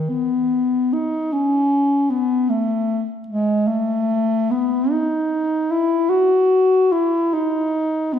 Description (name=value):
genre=classical, free, expressive piece for unaccompanied bass clarinet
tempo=50 BPM (dotted quarters)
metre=6/8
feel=rubato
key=unclear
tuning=A4 = 444 Hz
part: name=mellow bass clarinet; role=solo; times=0.0-8.2 s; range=D#3 to F#4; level=-17 LUFS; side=left 1 dB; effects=none
room=wet recital hall reverb, RT60 1.6 s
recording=recorded in a church or concert hall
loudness=-17 LUFS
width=side -9 dB against mid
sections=0.0-8.2 A section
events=none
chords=none